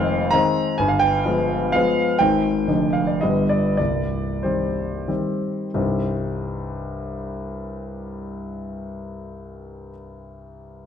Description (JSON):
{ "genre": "classical, romantic triple-time dance for piano with dotted rhythms", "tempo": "88-137 BPM", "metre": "3/4", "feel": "rubato", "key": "C minor", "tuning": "A4 = 445 Hz", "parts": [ { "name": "clear grand piano", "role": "solo", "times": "0.0-10.9 s", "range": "C1 to Bb5", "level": "-21 LUFS", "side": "equal", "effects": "none" } ], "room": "moderate recital hall reverb, RT60 1.5 s", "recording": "dark, warm production", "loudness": "-19 LUFS", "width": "side -8 dB against mid", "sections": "0.0-5.7 A section; 5.7-9.4 B section", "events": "slowing down 1.5-5.7", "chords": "0.0 Fm7; 0.8 G7b9; 2.2 Ab; 2.7 Ddim/F; 3.2 G; 3.8 Cm" }